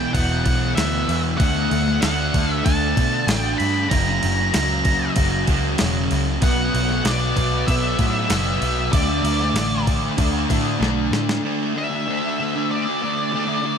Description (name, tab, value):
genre	rock, shoegaze and dream pop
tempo	96 BPM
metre	4/4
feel	straight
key	D major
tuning	A4 = 440 Hz
part	octave-fuzz lead guitar	melody	0.0-13.8 s	D5 to B5	-25 LUFS	equal	distortion, diffuse ambient delay
part	fuzz guitar	riff	0.0-13.8 s	E2 to D4	-22 LUFS	equal	distortion, wide subtle chorus
part	vintage muted picked electric bass	bass	0.0-11.4 s	E1 to B2	-24 LUFS	equal	none
part	crisp 8-bit digital drum machine	drums	0.1-11.4 s	crash cymbal, kick drum, snare drum	-23 LUFS	equal	none
room	moderate huge ambient reverb, RT60 5.3 s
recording	dreamy mix soaked in reverb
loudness	-18 LUFS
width	side -7 dB against mid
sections	0.0-11.4 A section; 11.4-13.8 B section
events	drum fill 10.8-11.4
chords	0.0 E7(no3); 1.4 D; 3.9 F#; 6.4 Bm; 8.9 D5